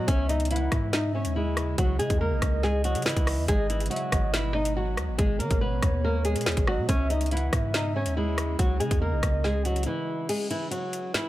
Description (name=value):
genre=hip hop, drill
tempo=141 BPM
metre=4/4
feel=half-time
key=unclear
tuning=A4 = 436 Hz
part: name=flamenco guitar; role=melody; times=0.0-11.3 s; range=E3 to D#5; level=-29 LUFS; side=equal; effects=low-pass filter, tape echo
part: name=gliding portamento lead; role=second line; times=0.0-10.3 s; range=C#5 to F#5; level=-35 LUFS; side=right 2 dB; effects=chorus, tremolo, tape echo
part: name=ethereal airy pad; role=sustained chords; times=0.0-10.3 s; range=B2 to E4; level=-37 LUFS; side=equal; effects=ensemble chorus, built-in reverb
part: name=long sustained 808-style bass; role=bass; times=0.0-9.9 s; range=G#1 to D#3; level=-28 LUFS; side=equal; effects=none
part: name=drill drum kit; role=drums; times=0.1-11.2 s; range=crash cymbal, hi-hat, kick drum, rim click, snare drum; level=-28 LUFS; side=equal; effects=none
room=digital ambience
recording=none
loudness=-24 LUFS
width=side -15 dB against mid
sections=0.0-10.3 A section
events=break 9.9-10.3, 10.3-11.3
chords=0.1 C#madd9; 3.5 G#madd9; 6.9 C#madd9; 10.3 N.C.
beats=| 0.08 0.51 0.93 1.36 | 1.78 2.21 2.63 3.06 | 3.48 3.91 4.34 4.76 | 5.19 5.61 6.04 6.46 | 6.89 7.31 7.74 8.16 | 8.59 9.02 9.44 9.87 | 10.29 10.72 11.14